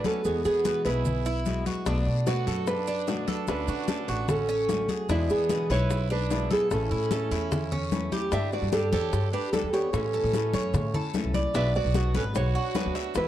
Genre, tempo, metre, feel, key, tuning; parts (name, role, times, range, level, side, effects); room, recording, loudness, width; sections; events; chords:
latin, Cuban son and guajira; 149 BPM; 4/4; straight; A major; A4 = 440 Hz
nylon-string guitar; melody; 0.0-13.3 s; E4 to E5; -29 LUFS; equal
growling trumpet; second line; 0.0-13.3 s; G#3 to B4; -36 LUFS; right 14 dB
flamenco guitar; accompaniment; 0.0-13.3 s; B2 to G4; -36 LUFS; left 4 dB
Cuban tres; arpeggios; 0.0-13.3 s; C#4 to E5; -34 LUFS; right 2 dB
congas; percussion; 0.0-13.3 s; -32 LUFS; left 3 dB
guiro; percussion; 0.0-13.3 s; -43 LUFS; left 18 dB
maracas; percussion; 0.0-13.3 s; -45 LUFS; right 21 dB
upright bass; bass; 0.2-13.3 s; G#1 to E3; -29 LUFS; equal
bongos; percussion; 1.9-13.3 s; -36 LUFS; left 7 dB
small room ambience; dry, close 1970s-style studio recording; -24 LUFS; side -12 dB against mid
0.0-8.3 A section; 8.3-13.3 B section
0.2 Eadd9; 1.9 Bm7; 3.5 Dmaj7; 5.1 E7; 6.7 A; 8.3 Gsus2; 9.9 A; 11.5 Bm